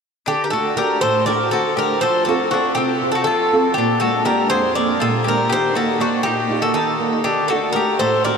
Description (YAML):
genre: greek folk, Greek bouzouki band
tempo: 240 BPM (eighths)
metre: 7/8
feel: straight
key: D phrygian dominant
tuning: A4 = 440 Hz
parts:
  - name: Greek bouzouki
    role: melody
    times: 0.3-8.4 s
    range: F#4 to D5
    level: -19 LUFS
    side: equal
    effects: tape echo
  - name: mandolin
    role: second line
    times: 0.3-8.4 s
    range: C4 to Bb4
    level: -22 LUFS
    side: left 4 dB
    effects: tape echo
  - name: nylon-string guitar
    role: accompaniment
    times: 0.3-8.4 s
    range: F2 to A4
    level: -21 LUFS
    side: right 3 dB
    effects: ensemble chorus
room: wet huge ambient reverb, RT60 8.0 s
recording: dreamy mix soaked in reverb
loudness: -16 LUFS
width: side -6 dB against mid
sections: 0.3-8.4 A section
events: none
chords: 0.3 D; 2.0 F; 3.8 Bb7; 5.5 Eb; 7.3 D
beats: | 0.25 0.50 0.75 1.00 1.25 1.50 1.75 | 2.00 2.25 2.50 2.75 3.00 3.25 3.50 | 3.75 4.00 4.25 4.50 4.75 5.00 5.25 | 5.50 5.75 6.00 6.25 6.50 6.75 7.00 | 7.25 7.50 7.75 8.00 8.25